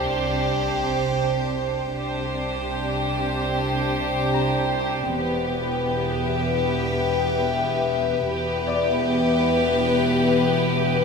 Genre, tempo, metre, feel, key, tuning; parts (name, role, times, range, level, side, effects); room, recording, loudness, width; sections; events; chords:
cinematic, suspense film score; free time; A4 = 441 Hz
rich studio violin section; melody; 0.0-11.0 s; B4 to C5; -28 LUFS; left 4 dB
dark studio violin section; second line; 0.0-11.0 s; G4; -28 LUFS; left 1 dB
dark studio viola section; accompaniment; 0.0-11.0 s; B3 to D4; -29 LUFS; left 1 dB
evolving wavetable pad; sustained chords; 0.0-11.0 s; B4 to G5; -27 LUFS; left 1 dB; phaser, built-in reverb
dark studio cello section; bass; 0.0-11.0 s; E2 to C3; -29 LUFS; right 3 dB
warm studio double bass section; bass; 0.0-11.0 s; E1 to C2; -30 LUFS; right 2 dB
sub drop; sound effects; 0.0-2.0 s; -40 LUFS; equal
Celtic harp; texture; 0.0-11.0 s; G4 to D6; -32 LUFS; left 4 dB
wet scoring stage reverb, RT60 1.8 s; minimal, uncompressed stereo recording; -20 LUFS; side -5 dB against mid
0.0-11.0 A section
impact 0.0-2.0
0.0 Csus2; 5.1 Em